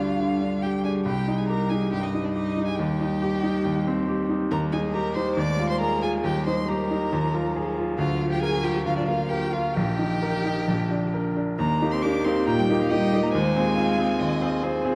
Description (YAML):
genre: quick classical-period movement for piano quartet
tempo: 138 BPM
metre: 4/4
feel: straight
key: C minor, Eb major from 4.5 s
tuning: A4 = 438 Hz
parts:
  - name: rich violin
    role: melody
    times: 0.0-14.8 s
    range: D5 to D6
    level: -35 LUFS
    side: equal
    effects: none
  - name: rich cello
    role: second line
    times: 0.0-14.8 s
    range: D3 to D4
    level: -31 LUFS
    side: equal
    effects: none
  - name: warm violin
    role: second line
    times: 0.0-14.9 s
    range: D4 to G5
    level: -34 LUFS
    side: equal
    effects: none
  - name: clear baby grand piano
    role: accompaniment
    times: 0.0-14.9 s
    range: Bb1 to Bb4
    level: -27 LUFS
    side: equal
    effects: none
room: moderate concert hall reverb, RT60 2.3 s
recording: dark, warm production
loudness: -24 LUFS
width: mono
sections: 0.0-11.6 A section; 11.6-14.9 B section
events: none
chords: 0.0 G5/D; 1.1 Cm; 2.8 Cm/Eb; 4.5 Eb; 5.4 Absus2/Eb; 6.2 Eb; 7.1 Fm7/Eb; 8.0 Bb/D; 9.8 Eb/Bb; 10.7 Bb; 11.6 Eb; 13.3 Fm7/Eb